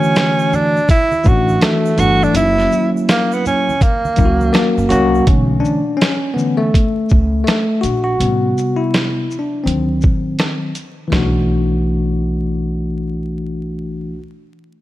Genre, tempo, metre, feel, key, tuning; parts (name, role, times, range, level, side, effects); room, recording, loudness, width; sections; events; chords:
hip hop, jazz-hop; 82 BPM; 4/4; swing 64% on 16ths; B minor; A4 = 440 Hz
breathy tenor saxophone; melody; 0.0-4.9 s; A3 to F#4; -16 LUFS; right 2 dB
bell-like tine electric piano; accompaniment; 0.0-14.2 s; C3 to A4; -17 LUFS; left 1 dB; slow stereo tremolo
tube shaker and congas; percussion; 0.0-5.3 s; -31 LUFS; right 2 dB
boom bap sampler-style drum kit; drums; 0.2-11.3 s; hi-hat, kick drum, shaker, snare drum, toms; -16 LUFS; equal
upright bass; bass; 1.3-14.2 s; F#1 to D2; -20 LUFS; equal
moderate echo chamber reverb, RT60 2.2 s; vinyl crackle; -13 LUFS; side -15 dB against mid
0.0-5.3 A section; 5.3-11.1 B section; 11.1-14.1 C section
tine electric piano solo 5.3-11.1
0.0 Gsus2; 2.3 F#7; 5.3 Bm11; 8.2 Am9; 9.7 D7b9; 11.1 Bm7